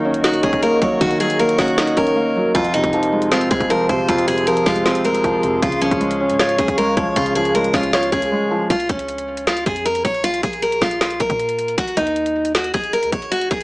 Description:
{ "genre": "hip hop, trap", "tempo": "156 BPM", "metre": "4/4", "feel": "half-time", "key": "Bb minor", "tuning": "A4 = 438 Hz", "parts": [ { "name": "picked steel-string acoustic guitar", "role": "melody", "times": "0.0-13.6 s", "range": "Db4 to Db5", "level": "-19 LUFS", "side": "equal", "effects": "none" }, { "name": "dark concert grand piano", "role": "accompaniment", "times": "0.0-8.7 s", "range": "F2 to Db5", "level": "-19 LUFS", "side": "equal", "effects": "none" }, { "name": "warbly tape-like pad", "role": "sustained chords", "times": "0.0-8.7 s", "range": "Ab4 to Db6", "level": "-26 LUFS", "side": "equal", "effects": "chorus, built-in reverb, phaser" }, { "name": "warm 808-style bass", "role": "bass", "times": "0.0-13.6 s", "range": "Eb1 to Bb2", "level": "-34 LUFS", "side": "equal", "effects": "none" }, { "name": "trap drum kit", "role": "drums", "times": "0.1-13.6 s", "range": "hi-hat, kick drum, snare drum", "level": "-22 LUFS", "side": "equal", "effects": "none" } ], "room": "light reverb", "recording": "dry, gritty hardware recording, transformer saturation, small speaker sound", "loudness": "-15 LUFS", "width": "side -24 dB against mid", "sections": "0.0-8.7 A section; 8.7-13.6 B section", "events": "silent gap 2.2-2.5; drums muted 8.3-8.7", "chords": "0.0 Ebm7; 2.5 Fm; 5.6 Db; 8.7 Bbm; 11.8 Eb5", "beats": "0.24 0.62 | 1.01 1.39 1.78 2.16 | 2.55 2.93 3.32 3.70 | 4.09 4.47 4.86 5.24 | 5.62 6.01 6.39 6.78 | 7.16 7.55 7.93 8.32 | 8.70 9.09 9.47 9.86 | 10.24 10.62 11.01 11.39 | 11.78 12.16 12.55 12.93 | 13.32" }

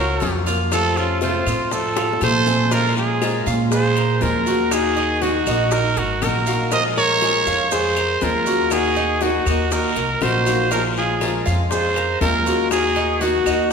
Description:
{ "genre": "latin, Cuban son and guajira", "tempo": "120 BPM", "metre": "4/4", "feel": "straight", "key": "Bb minor", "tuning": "A4 = 439 Hz", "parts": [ { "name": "growling trumpet", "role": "melody", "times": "0.0-13.7 s", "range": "F4 to Eb5", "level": "-21 LUFS", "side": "right 3 dB", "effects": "none" }, { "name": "flamenco guitar", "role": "second line", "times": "0.0-13.7 s", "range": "C4 to Bb4", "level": "-27 LUFS", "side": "left 2 dB", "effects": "none" }, { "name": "Cuban tres", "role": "arpeggios", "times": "0.0-13.7 s", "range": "Eb4 to F5", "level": "-25 LUFS", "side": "equal", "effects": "none" }, { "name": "upright bass", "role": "bass", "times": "0.0-13.7 s", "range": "Ab1 to Bb2", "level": "-23 LUFS", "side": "right 1 dB", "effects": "none" }, { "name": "picked steel-string acoustic guitar", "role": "accompaniment", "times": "0.2-13.7 s", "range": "C3 to Gb4", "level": "-25 LUFS", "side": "left 4 dB", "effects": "none" }, { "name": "bongos", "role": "percussion", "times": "0.2-13.7 s", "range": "none", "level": "-30 LUFS", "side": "left 4 dB", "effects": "none" }, { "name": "guiro", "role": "percussion", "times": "0.2-13.7 s", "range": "none", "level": "-33 LUFS", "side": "left 5 dB", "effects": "none" }, { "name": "maracas", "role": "percussion", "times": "0.2-13.7 s", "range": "none", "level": "-35 LUFS", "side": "right 6 dB", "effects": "none" }, { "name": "claves", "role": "percussion", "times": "0.7-13.7 s", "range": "none", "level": "-35 LUFS", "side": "left 6 dB", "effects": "none" } ], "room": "wet scoring stage reverb, RT60 1.6 s", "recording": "recorded in a church or concert hall", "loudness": "-16 LUFS", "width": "side -6 dB against mid", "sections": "0.0-2.7 A section; 2.7-13.7 B section", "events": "drum fill 2.0-2.7", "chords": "0.0 Bbm; 0.7 F; 2.7 Bbm7; 4.7 Ebm; 6.7 Bbm7; 8.7 Ebm; 10.7 Bbm7; 12.7 Ebm", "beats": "0.22 | 0.72 1.22 1.72 2.22 | 2.72 3.22 3.72 4.22 | 4.72 5.22 5.72 6.22 | 6.72 7.22 7.72 8.22 | 8.72 9.22 9.72 10.22 | 10.72 11.22 11.71 12.21 | 12.71 13.21 13.71" }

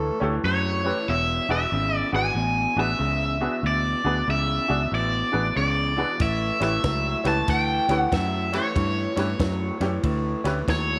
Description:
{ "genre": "electric blues shuffle", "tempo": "94 BPM", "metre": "4/4", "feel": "swing 64% on 8ths", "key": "unclear", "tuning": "A4 = 441 Hz", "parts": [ { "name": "electric guitar through a small old amp", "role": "riff", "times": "0.0-11.0 s", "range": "E2 to F#3", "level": "-32 LUFS", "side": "equal", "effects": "none" }, { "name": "fingered electric bass", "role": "bass", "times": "0.0-11.0 s", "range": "E1 to G2", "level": "-29 LUFS", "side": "equal", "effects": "none" }, { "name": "bright upright piano", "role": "accompaniment", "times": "0.2-10.6 s", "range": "C#4 to D5", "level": "-32 LUFS", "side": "equal", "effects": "none" }, { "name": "cranked stack guitar", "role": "melody", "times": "0.5-11.0 s", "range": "C#5 to A5", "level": "-27 LUFS", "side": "equal", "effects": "overdrive" }, { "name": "compact cocktail drum kit", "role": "drums", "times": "6.2-10.9 s", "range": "kick drum, ride cymbal, snare drum", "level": "-33 LUFS", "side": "equal", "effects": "none" } ], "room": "light reverb, small room ambience", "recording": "none", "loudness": "-24 LUFS", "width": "mono", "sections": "0.0-11.0 A section", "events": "none", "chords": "0.0 A7; 1.1 E7; 6.2 A7", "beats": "0.44 | 1.08 1.72 2.36 3.00 | 3.64 4.28 4.92 5.56 | 6.20 6.84 7.48 8.12 | 8.76 9.40 10.04 10.68" }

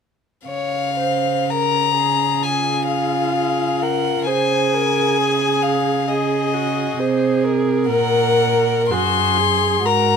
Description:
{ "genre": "classical, slow romantic movement for string quartet", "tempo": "56-67 BPM", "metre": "4/4", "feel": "rubato", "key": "Db major", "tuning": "A4 = 441 Hz", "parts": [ { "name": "warm violin", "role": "melody", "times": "0.5-10.2 s", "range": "Eb5 to C6", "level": "-20 LUFS", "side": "left 7 dB", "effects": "none" }, { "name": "dark violin", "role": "second line", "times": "0.5-10.2 s", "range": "Gb4 to Db5", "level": "-23 LUFS", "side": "left 2 dB", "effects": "none" }, { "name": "warm cello", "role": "bass", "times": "0.5-10.2 s", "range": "Gb2 to Db3", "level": "-23 LUFS", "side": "right 7 dB", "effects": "none" }, { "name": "dark viola", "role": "accompaniment", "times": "2.4-10.2 s", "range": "F4 to Bb4", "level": "-22 LUFS", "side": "right 2 dB", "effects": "none" } ], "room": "light reverb", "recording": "minimal, uncompressed stereo recording", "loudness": "-16 LUFS", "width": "side -6 dB against mid", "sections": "0.5-10.2 A section", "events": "none", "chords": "0.5 Db; 4.3 Ab/Db; 7.9 Gb/Bb", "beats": "| 0.48 1.51 2.43 3.36 | 4.27 5.17 6.08 6.98 | 7.89 8.89 9.85" }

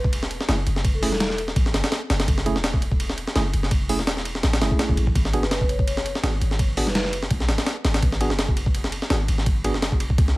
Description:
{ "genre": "drum and bass, jungle", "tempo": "167 BPM", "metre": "4/4", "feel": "swing 54% on 16ths", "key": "F# minor", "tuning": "A4 = 439 Hz", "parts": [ { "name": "warm 808-style bass", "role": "bass", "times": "0.0-10.4 s", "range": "E1 to C#2", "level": "-25 LUFS", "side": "equal", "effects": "none" }, { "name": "breakbeat sampler-style drum kit", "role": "drums", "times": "0.0-10.4 s", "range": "hi-hat, kick drum, ride cymbal, snare drum", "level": "-22 LUFS", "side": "equal", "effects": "small room ambience" }, { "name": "tine electric piano", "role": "stabs", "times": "0.5-9.7 s", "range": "A3 to G#4", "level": "-29 LUFS", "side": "right 2 dB", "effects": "medium stereo tremolo, dub echo" }, { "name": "vibraphone with soft mallets", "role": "melody", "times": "0.9-1.3, 5.4-7.0 s", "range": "A4 to C#5", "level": "-32 LUFS", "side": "equal", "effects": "dub echo" } ], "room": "digital ambience", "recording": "vinyl crackle", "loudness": "-20 LUFS", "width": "side -20 dB against mid", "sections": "0.0-10.4 A section", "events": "none", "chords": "0.0 F#m9; 5.2 G#m7", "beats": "0.12 0.48 | 0.84 1.20 1.56 1.92 | 2.28 2.64 3.00 3.36 | 3.72 4.08 4.43 4.79 | 5.15 5.51 5.87 6.23 | 6.59 6.95 7.31 7.67 | 8.03 8.39 8.75 9.11 | 9.46 9.82 10.18" }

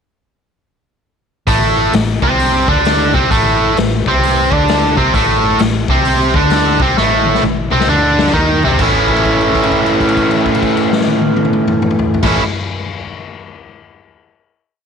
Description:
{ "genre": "blues rock power trio and southern rock", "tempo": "131 BPM", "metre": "4/4", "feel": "swing 64% on 8ths", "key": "A minor", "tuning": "A4 = 439 Hz", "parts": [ { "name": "biting overdriven guitar", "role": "riff", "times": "1.5-12.4 s", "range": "A2 to E4", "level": "-12 LUFS", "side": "right 1 dB", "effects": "none" }, { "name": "vintage muted fingered electric bass", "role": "bass", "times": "1.5-12.4 s", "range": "A1 to D#2", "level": "-19 LUFS", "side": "right 1 dB", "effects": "none" }, { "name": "raw garage drum kit", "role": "drums", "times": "1.5-12.3 s", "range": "crash cymbal, hi-hat, kick drum, snare drum, toms", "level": "-18 LUFS", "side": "left 4 dB", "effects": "none" } ], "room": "light reverb, small room ambience", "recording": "1960s-style stereo", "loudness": "-11 LUFS", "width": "side -6 dB against mid", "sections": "1.5-8.8 riff; 8.8-12.5 final chord", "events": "drum fill 7.0-8.8; held note 8.8-12.2", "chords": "1.5 Am; 8.8 A", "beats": "| 1.47 1.93 2.39 2.85 | 3.31 3.77 4.23 4.68 | 5.14 5.60 6.06 6.51 | 6.97 7.42 7.88 8.34 | 8.79 9.25 9.71 10.16 | 10.62 11.08 11.54 11.99" }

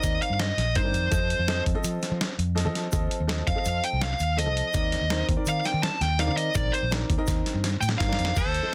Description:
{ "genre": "progressive instrumental, band music in an uneven meter", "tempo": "166 BPM", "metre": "5/4", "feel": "straight", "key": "unclear", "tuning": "A4 = 440 Hz", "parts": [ { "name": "fuzz lead guitar", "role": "melody", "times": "0.0-8.7 s", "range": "C5 to A5", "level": "-30 LUFS", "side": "equal", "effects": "distortion" }, { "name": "warm grand piano", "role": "accompaniment", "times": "0.0-8.7 s", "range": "Eb3 to F5", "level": "-35 LUFS", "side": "equal", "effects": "none" }, { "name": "fretless electric bass", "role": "bass", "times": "0.0-8.6 s", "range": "Bb1 to F3", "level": "-30 LUFS", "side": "equal", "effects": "none" }, { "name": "dusty soul sampler-style drum kit", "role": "drums", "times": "0.0-8.6 s", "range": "crash cymbal, hi-hat, kick drum, snare drum", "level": "-31 LUFS", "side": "equal", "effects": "none" }, { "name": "egg shaker", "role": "percussion", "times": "0.0-8.5 s", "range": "none", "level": "-42 LUFS", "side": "equal", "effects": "none" }, { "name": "trumpet with straight mute", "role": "second line", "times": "8.4-8.7 s", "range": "A4", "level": "-34 LUFS", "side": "equal", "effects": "none" } ], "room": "light reverb", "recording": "dense, heavily limited modern master", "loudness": "-26 LUFS", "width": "mono", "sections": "0.0-8.4 A section", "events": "lead electric guitar solo 0.0-8.4; drum fill 7.6-8.4", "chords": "0.0 Cm7/Eb; 1.1 F7; 4.7 Cm7/Eb", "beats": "0.03 0.39 0.76 | 1.12 1.48 1.84 2.20 2.56 | 2.92 3.29 3.65 4.01 4.37 | 4.74 5.10 5.46 5.82 6.18 | 6.55 6.91 7.27 7.63 8.00 | 8.36 8.72" }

